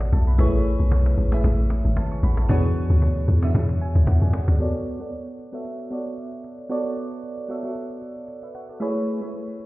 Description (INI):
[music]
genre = amapiano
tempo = 114 BPM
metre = 4/4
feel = swing 55% on 16ths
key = B dorian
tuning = A4 = 444 Hz
[part]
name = crystalline FM electric piano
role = accompaniment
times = 0.0-9.7 s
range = E3 to C#6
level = -27 LUFS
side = equal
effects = chorus, low-pass filter
[part]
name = deep log drum bass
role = bass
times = 0.0-4.6 s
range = G#1 to E2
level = -18 LUFS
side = equal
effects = none
[part]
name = cajon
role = drums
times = 0.0-9.7 s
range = none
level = -31 LUFS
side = equal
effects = none
[sound]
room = small room ambience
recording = heard muffled through a wall, stone room reverb, EQ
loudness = -20 LUFS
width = side -19 dB against mid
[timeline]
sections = 0.0-4.6 A section; 4.6-9.7 B section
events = drop 0.0-4.6; drum fill 3.5-4.6; FM electric piano fill 3.5-4.6; filter sweep on FM electric piano 4.6-9.7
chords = 0.4 Amaj7; 2.5 E13; 4.6 Bm9; 8.8 Amaj7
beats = | 0.39 0.91 1.44 1.97 | 2.49 3.02 3.54 4.07 | 4.60 5.12 5.65 6.17 | 6.70 7.23 7.75 8.28 | 8.81 9.33